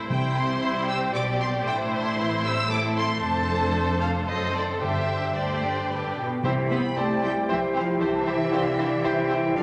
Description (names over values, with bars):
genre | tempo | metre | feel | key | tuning
quick classical-period movement for symphony orchestra | 115 BPM | 3/4 | straight | C major | A4 = 441 Hz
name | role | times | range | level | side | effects
rich studio violin section | second line | 0.0-9.6 s | E4 to D5 | -31 LUFS | equal | none
warm studio viola section | accompaniment | 0.0-9.6 s | D3 to A4 | -37 LUFS | equal | none
rich studio violin section | melody | 0.1-9.6 s | D5 to E6 | -33 LUFS | equal | none
dark studio cello section | bass | 0.1-9.6 s | D2 to B3 | -32 LUFS | equal | none
warm studio double bass section | bass | 0.1-9.6 s | F1 to F2 | -36 LUFS | equal | none
timpani | percussion | 0.1-0.8, 4.8-7.2 s | G2 to C3 | -34 LUFS | equal | none
clear clarinet | second line | 6.4-9.6 s | C5 to D5 | -33 LUFS | equal | none
mellow flute section | second line | 6.4-9.6 s | E5 to A5 | -34 LUFS | equal | none
dark French horn section | sustained chords | 6.4-9.6 s | D4 to A4 | -30 LUFS | equal | none
mellow bassoon | accompaniment | 7.0-9.6 s | C4 to G4 | -34 LUFS | equal | none
room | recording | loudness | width
wet scoring stage reverb, RT60 1.7 s | none | -25 LUFS | mono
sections
0.0-6.4 A section; 6.4-9.6 B section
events
none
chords
0.1 C; 1.7 Am7; 3.2 Dm7/F; 4.3 F#dim7; 4.8 Gsus4; 5.9 G; 6.4 C